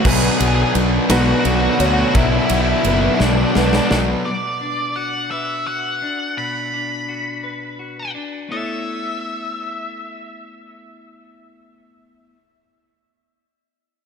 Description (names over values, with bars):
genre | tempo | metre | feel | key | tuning
post-rock | 56 BPM (dotted quarters) | 6/8 | straight | A major | A4 = 439 Hz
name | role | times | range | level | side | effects
octave-fuzz lead guitar | melody | 0.0-12.3 s | D4 to B5 | -23 LUFS | equal | distortion, ping-pong delay
hand-pumped harmonium | sustained chords | 0.0-4.2 s | D3 to B3 | -26 LUFS | left 2 dB | none
felt-muted upright piano | arpeggios | 0.0-4.3 s | B4 to C#5 | -27 LUFS | right 2 dB | analog chorus, ping-pong delay
thick fuzz guitar | riff | 0.0-4.2 s | B2 to B3 | -19 LUFS | left 1 dB | distortion
fuzz fingered electric bass | bass | 0.0-4.1 s | F#1 to D2 | -20 LUFS | equal | overdrive
big rock drum kit | drums | 0.0-4.1 s | crash cymbal, kick drum, ride cymbal, snare drum | -21 LUFS | right 1 dB | none
clean electric guitar | arpeggios | 4.3-12.4 s | B2 to C#5 | -30 LUFS | left 4 dB | spring reverb, ping-pong delay
room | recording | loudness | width
moderate plate reverb, RT60 2.6 s | dreamy mix soaked in reverb | -16 LUFS | side -6 dB against mid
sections
0.0-4.3 A section; 4.3-8.5 B section; 8.5-12.8 C section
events
drum fill 3.2-4.3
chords
0.0 Bm; 8.5 Aadd9